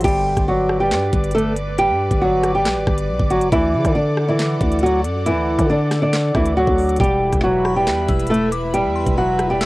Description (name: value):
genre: hip hop, drill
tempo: 138 BPM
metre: 4/4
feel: half-time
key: unclear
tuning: A4 = 441 Hz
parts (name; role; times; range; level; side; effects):
- flamenco guitar; melody; 0.0-9.7 s; E3 to D5; -18 LUFS; equal; cassette tape
- airy breathy pad; sustained chords; 0.0-9.7 s; E4 to D6; -27 LUFS; equal; chorus
- growling 808-style bass; bass; 0.0-9.7 s; E1 to D3; -22 LUFS; equal; none
- drill drum kit; drums; 0.0-9.7 s; crash cymbal, handclaps, hi-hat, kick drum, rim click, snare drum; -22 LUFS; equal; none
- glassy synth bell; second line; 7.6-9.7 s; B5 to E6; -31 LUFS; left 6 dB; chorus, tape echo
room: little or no reverb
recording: home recording on cassette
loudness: -15 LUFS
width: side -19 dB against mid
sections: 0.0-9.7 A section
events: none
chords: 0.0 G; 3.5 D; 7.0 Em